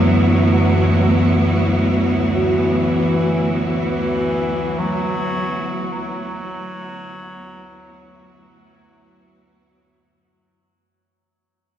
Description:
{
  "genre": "dark ambient drone",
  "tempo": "free time",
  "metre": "none",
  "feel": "none",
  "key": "unclear",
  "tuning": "A4 = 440 Hz",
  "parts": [
    { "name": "warm bass clarinet", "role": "melody", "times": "0.0-9.3 s", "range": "E3 to F#3", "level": "-25 LUFS", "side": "left 1 dB", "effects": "tape echo" },
    { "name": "clear studio cello section", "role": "sustained chords", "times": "0.0-10.4 s", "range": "D2 to F#4", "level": "-19 LUFS", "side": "right 1 dB", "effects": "none" },
    { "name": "gamelan-type bronze metallophone", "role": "arpeggios", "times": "0.0-9.1 s", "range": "G#3 to F#4", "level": "-28 LUFS", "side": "right 2 dB", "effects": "tape echo" },
    { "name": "deep rumbling drone", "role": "drone", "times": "0.0-10.6 s", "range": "F#2 to E3", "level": "-20 LUFS", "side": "left 1 dB", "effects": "built-in reverb" },
    { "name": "bronze singing bowl", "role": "texture", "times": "0.0-10.5 s", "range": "none", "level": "barely audible", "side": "none", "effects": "none" }
  ],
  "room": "wet cathedral reverb, RT60 5.9 s",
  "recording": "cassette tape",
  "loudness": "-16 LUFS",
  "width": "side -10 dB against mid",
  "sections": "0.0-10.4 A section",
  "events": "fade-out 0.0-10.4",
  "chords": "0.0 D"
}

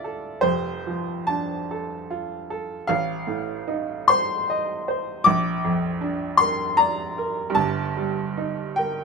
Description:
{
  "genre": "classical, romantic nocturne for solo piano",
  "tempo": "76 BPM",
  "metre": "3/4",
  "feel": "uneven beats, rubato",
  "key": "Bb major",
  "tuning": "A4 = 437 Hz",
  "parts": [
    { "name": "clear upright piano", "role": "solo", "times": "0.0-9.0 s", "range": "F1 to D6", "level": "-22 LUFS", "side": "equal", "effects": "none" }
  ],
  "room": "moderate studio reverb, RT60 0.7 s",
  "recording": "none",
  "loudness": "-22 LUFS",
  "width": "side -4 dB against mid",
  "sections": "0.0-9.0 A section",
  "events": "none",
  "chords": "0.4 Dm/F; 2.9 F7/A; 5.3 Bb; 7.6 Eb/G"
}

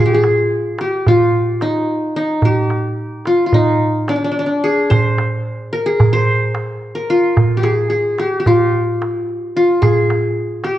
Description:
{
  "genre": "Turkish makam ensemble",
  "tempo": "219 BPM (eighths)",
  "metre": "9/8",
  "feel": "straight",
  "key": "F makam huseyni",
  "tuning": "A4 = 440 Hz",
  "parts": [
    { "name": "qanun", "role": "melody", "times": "0.0-10.8 s", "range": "D4-30c to C5", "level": "-15 LUFS", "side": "left 1 dB", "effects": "none" },
    { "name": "darbuka", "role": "percussion", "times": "0.2-10.8 s", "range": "none", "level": "-17 LUFS", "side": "right 2 dB", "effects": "none" }
  ],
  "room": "wet recital hall reverb, RT60 1.4 s",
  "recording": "worn, warbling old tape, cassette tape, warbly pitch drift",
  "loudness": "-13 LUFS",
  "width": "side -13 dB against mid",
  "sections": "0.0-10.8 A section",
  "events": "none",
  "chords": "none"
}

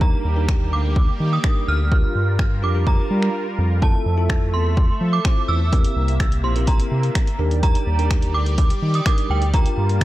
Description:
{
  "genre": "dance-pop",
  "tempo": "126 BPM",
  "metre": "4/4",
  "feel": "straight",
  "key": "unclear",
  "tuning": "A4 = 441 Hz",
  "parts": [
    { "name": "synth chime", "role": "melody", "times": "0.0-10.0 s", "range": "G5 to F6", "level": "-27 LUFS", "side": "right 3 dB", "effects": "ensemble chorus, digital delay" },
    { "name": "bell-like tine electric piano", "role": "accompaniment", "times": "0.0-10.0 s", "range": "C4 to C5", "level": "-29 LUFS", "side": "equal", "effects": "medium stereo tremolo, sidechain pumping" },
    { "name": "filtered supersaw swell", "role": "sustained chords", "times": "0.0-10.0 s", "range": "C3 to E5", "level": "-30 LUFS", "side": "equal", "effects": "sidechain pumping" },
    { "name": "round analog bass", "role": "bass", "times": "0.0-10.0 s", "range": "Bb1 to G3", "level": "-20 LUFS", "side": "equal", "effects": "sidechain pumping" },
    { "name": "punchy analog drum machine", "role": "drums", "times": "0.0-10.0 s", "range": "finger snaps, hi-hat, kick drum", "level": "-19 LUFS", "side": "equal", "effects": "none" }
  ],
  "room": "digital ambience",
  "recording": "dark, warm production",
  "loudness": "-17 LUFS",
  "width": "side -16 dB against mid",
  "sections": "0.0-10.0 A section",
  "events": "break 3.3-3.8",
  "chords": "0.0 Ebmaj7; 1.9 Gm7; 3.8 Fmaj7; 5.7 C7; 7.4 Ebmaj7; 9.5 Gm7"
}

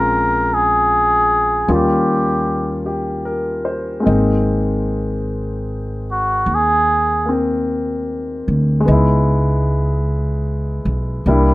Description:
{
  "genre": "jazz ballad",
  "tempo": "50 BPM",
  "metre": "4/4",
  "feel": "swing 67% on 8ths",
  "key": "Ab major",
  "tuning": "A4 = 441 Hz",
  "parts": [
    { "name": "trumpet with cup mute", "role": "melody", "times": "0.0-7.3 s", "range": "Gb4 to Bb4", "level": "-15 LUFS", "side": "equal", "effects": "plate reverb" },
    { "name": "warm baby grand piano", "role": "accompaniment", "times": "0.0-11.5 s", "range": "G3 to C5", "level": "-20 LUFS", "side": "left 2 dB", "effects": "plate reverb" },
    { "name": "upright bass", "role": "bass", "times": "0.0-11.5 s", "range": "Ab1 to Eb2", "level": "-19 LUFS", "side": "equal", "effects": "none" }
  ],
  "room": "moderate studio ambience, RT60 0.5 s",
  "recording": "rough home demo mix",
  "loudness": "-15 LUFS",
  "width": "side -19 dB against mid",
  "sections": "0.0-4.1 A section; 4.1-11.5 B section",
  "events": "muted trumpet solo 4.1-11.5",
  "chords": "0.0 Bbm7; 1.7 Eb7; 4.1 Abadd9; 8.9 Dbm9"
}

